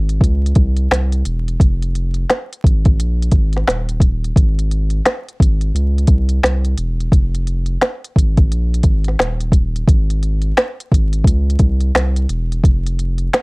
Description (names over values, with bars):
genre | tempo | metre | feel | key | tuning
lo-fi hip hop | 87 BPM | 4/4 | swing 64% on 16ths | F minor | A4 = 442 Hz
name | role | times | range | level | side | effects
saturated sub bass | bass | 0.0-13.3 s | Eb1 to Db2 | -17 LUFS | equal | none
organic electronic drum kit | drums | 0.1-13.4 s | finger snaps, hi-hat, kick drum, snare drum | -14 LUFS | equal | none
room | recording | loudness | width
little or no reverb | vinyl crackle | -14 LUFS | side -30 dB against mid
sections
0.0-13.4 A section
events
none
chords
none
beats
0.22 0.91 | 1.60 2.29 2.98 3.67 | 4.36 5.05 5.74 6.43 | 7.12 7.81 8.50 9.19 | 9.88 10.57 11.26 11.95 | 12.64 13.32